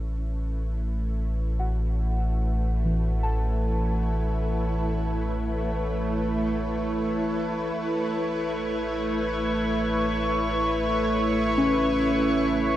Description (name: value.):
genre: ambient.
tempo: free time.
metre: none.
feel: none.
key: A major.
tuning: A4 = 442 Hz.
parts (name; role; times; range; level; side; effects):
shimmering ambient pad; sustained chords; 0.0-12.8 s; A3 to C#5; -27 LUFS; equal; chorus, built-in reverb, shimmer reverb.
muted felt-like synth keys; arpeggios; 0.0-12.8 s; E3 to A5; -31 LUFS; equal; chorus, tape echo.
round analog bass; bass; 0.0-12.8 s; A1; -28 LUFS; equal; none.
drifting glass-harmonics texture; texture; 8.2-12.8 s; C#6; -30 LUFS; equal; chorus, built-in reverb, shimmer reverb.
room: moderate huge ambient reverb, RT60 8.8 s.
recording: worn, warbling old tape, cassette tape, warbly pitch drift, nothing above 10.8 kHz.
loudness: -23 LUFS.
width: side -13 dB against mid.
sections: 0.0-12.8 A section.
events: fade-in on ambient pad 0.0-12.8; fade-in on synth keys 0.0-12.8; fade-out on analog synth bass 0.0-12.8.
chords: 0.0 A.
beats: free time.